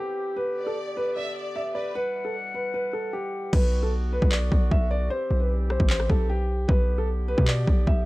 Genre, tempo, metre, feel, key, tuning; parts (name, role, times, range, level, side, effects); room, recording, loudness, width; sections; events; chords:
hip hop, trap; 152 BPM; 4/4; half-time; B phrygian; A4 = 440 Hz
warm baby grand piano; melody; 0.0-8.0 s; G4 to E5; -29 LUFS; equal
dark woodwind section; sustained chords; 0.0-8.1 s; B2 to F#5; -35 LUFS; left 1 dB
warm studio violin section; second line; 0.6-1.9 s; B4 to E5; -36 LUFS; left 1 dB; tape echo
hard-hitting 808-style bass; bass; 3.5-8.1 s; A1 to B2; -24 LUFS; equal
trap drum kit; drums; 3.5-8.0 s; crash cymbal, handclaps, kick drum, rim click; -22 LUFS; equal; vintage 12-bit sampler grit
little or no reverb; -23 LUFS; side -20 dB against mid
0.0-3.5 A section; 3.5-8.1 B section
hi-hats muted 3.5-8.1
0.4 G; 2.0 Emadd9/B; 3.5 Bm; 5.1 C; 6.7 G/B